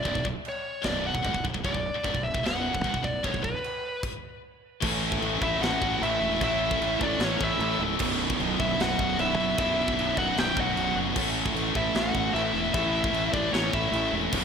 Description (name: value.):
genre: heavy metal.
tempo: 152 BPM.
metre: 4/4.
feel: straight.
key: unclear.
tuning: A4 = 440 Hz.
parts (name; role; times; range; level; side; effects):
high-gain lead guitar; melody; 0.0-14.1 s; B4 to G5; -29 LUFS; left 1 dB; distortion, slapback echo, ping-pong delay.
heavy high-gain guitar; riff; 0.0-14.4 s; B1 to A3; -31 LUFS; left 11 dB; distortion.
fuzz fingered electric bass; bass; 0.0-14.4 s; B0 to A1; -33 LUFS; equal; overdrive.
scooped high-gain guitar; riff; 0.1-14.4 s; B1 to A3; -33 LUFS; right 11 dB; distortion.
tight metal drum kit; drums; 0.1-14.4 s; china cymbal, crash cymbal, kick drum, snare drum; -32 LUFS; equal; none.
fuzz guitar; riff; 4.8-14.4 s; B1 to A4; -32 LUFS; equal; distortion, slapback echo.
high-gain lead guitar; second line; 5.4-14.1 s; C#4 to G4; -35 LUFS; right 2 dB; distortion, slapback echo.
room: moderate recital hall reverb, RT60 1.6 s, studio ambience.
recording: big arena sound.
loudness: -24 LUFS.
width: side -6 dB against mid.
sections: 0.0-4.8 A section; 4.8-14.4 B section.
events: stop 4.0-4.8.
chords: 0.0 Bm; 4.8 A; 8.0 Bm; 11.2 A.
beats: | 0.05 0.45 0.85 1.25 | 1.64 2.04 2.44 2.83 | 3.23 3.63 4.03 4.42 | 4.82 5.22 5.61 6.01 | 6.41 6.80 7.20 7.59 | 7.99 8.39 8.78 9.18 | 9.57 9.97 10.37 10.76 | 11.16 11.55 11.95 12.34 | 12.74 13.14 13.53 13.93 | 14.32.